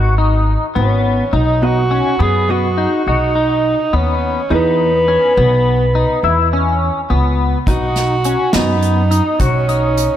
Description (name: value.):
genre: progressive instrumental, band music in an uneven meter.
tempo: 208 BPM (eighths).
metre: 11/8.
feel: straight.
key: B major.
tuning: A4 = 442 Hz.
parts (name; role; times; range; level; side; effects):
clean electric guitar; arpeggios; 0.0-10.2 s; B3 to F#4; -19 LUFS; left 4 dB; analog chorus, slapback echo.
upright bass; bass; 0.0-10.1 s; G#1 to F#2; -16 LUFS; equal; none.
mellow tenor saxophone; melody; 0.8-10.2 s; B3 to G#4; -17 LUFS; right 1 dB; slapback echo, tape echo.
vintage hollow-body jazz guitar; accompaniment; 1.6-8.7 s; B2 to D#5; -22 LUFS; right 3 dB; slapback echo.
unplugged drum kit; drums; 7.7-10.1 s; hi-hat, kick drum, snare drum; -19 LUFS; right 1 dB; none.
room: moderate lush hall reverb, RT60 2.1 s.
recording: big arena sound.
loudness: -12 LUFS.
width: side -11 dB against mid.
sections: 0.0-10.2 A section.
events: none.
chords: 0.0 G#m; 1.3 B; 4.5 E; 7.7 B.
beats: 0.18 0.47 0.76 1.05 | 1.34 1.62 1.91 2.20 2.49 2.78 3.06 3.35 3.64 3.93 4.22 | 4.51 4.79 5.08 5.37 5.66 5.95 6.24 6.52 6.81 7.10 7.39 | 7.68 7.96 8.25 8.54 8.83 9.12 9.41 9.69 9.98.